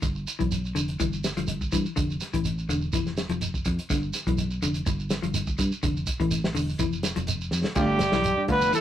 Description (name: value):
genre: afrobeat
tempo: 124 BPM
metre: 4/4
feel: straight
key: G mixolydian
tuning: A4 = 439 Hz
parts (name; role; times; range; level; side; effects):
- clean electric guitar; arpeggios; 0.0-8.8 s; D3 to F3; -30 LUFS; left 4 dB; none
- fingered electric bass; bass; 0.0-8.7 s; E1 to G2; -30 LUFS; equal; none
- warm soul drum kit; drums; 0.0-8.8 s; crash cymbal, hi-hat, kick drum, snare drum; -30 LUFS; right 1 dB; none
- shekere; percussion; 0.0-8.8 s; none; -32 LUFS; right 3 dB; none
- warm trumpet; melody; 7.8-8.8 s; G4 to B4; -23 LUFS; right 1 dB; none
- clear trombone; second line; 7.8-8.8 s; G3 to B3; -31 LUFS; right 3 dB; none
- barky reed electric piano; accompaniment; 7.8-8.7 s; A3 to F4; -27 LUFS; right 2 dB; overdrive, fast tremolo
room: light reverb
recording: rough rehearsal-room recording, tube saturation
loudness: -24 LUFS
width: side -11 dB against mid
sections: 0.0-7.8 A section; 7.8-8.8 B section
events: drum fill 7.5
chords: 0.0 G7; 2.0 Fmaj7; 3.9 G7; 5.8 Fmaj7; 7.8 G7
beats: | 0.04 0.52 1.00 1.48 | 1.97 2.45 2.93 3.42 | 3.90 4.38 4.86 5.34 | 5.83 6.31 6.79 7.27 | 7.75 8.24 8.72